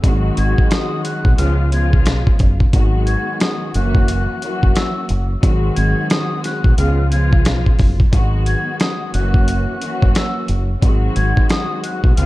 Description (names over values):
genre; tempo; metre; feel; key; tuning
hip hop, boom-bap hip-hop; 89 BPM; 4/4; swing 62% on 16ths; G# minor; A4 = 439 Hz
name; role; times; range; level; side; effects
warm studio string section; accompaniment; 0.0-12.3 s; C#3 to F#4; -22 LUFS; left 1 dB; cassette tape, high-pass filter, low-pass filter
deep dub fingered electric bass; bass; 0.0-12.3 s; F#1 to C#2; -17 LUFS; equal; none
dusty soul sampler-style drum kit; drums; 0.0-12.3 s; hi-hat, kick drum, snare drum; -15 LUFS; equal; none
breathy jazz flute; melody; 0.4-12.3 s; D#6 to G#6; -26 LUFS; left 1 dB; high-pass filter, low-pass filter, digital delay
room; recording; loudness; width
little or no reverb; dark, warm production; -14 LUFS; side -18 dB against mid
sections
0.0-12.3 A section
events
none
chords
0.0 G#7; 1.4 C#7; 2.7 G#m7; 3.7 F#7; 5.4 G#7; 6.8 C#7; 8.1 G#m7; 9.1 F#7; 10.8 G#7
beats
| 0.04 0.71 1.39 2.06 | 2.74 3.41 4.08 4.76 | 5.43 6.11 6.78 7.46 | 8.13 8.80 9.48 10.15 | 10.83 11.50 12.17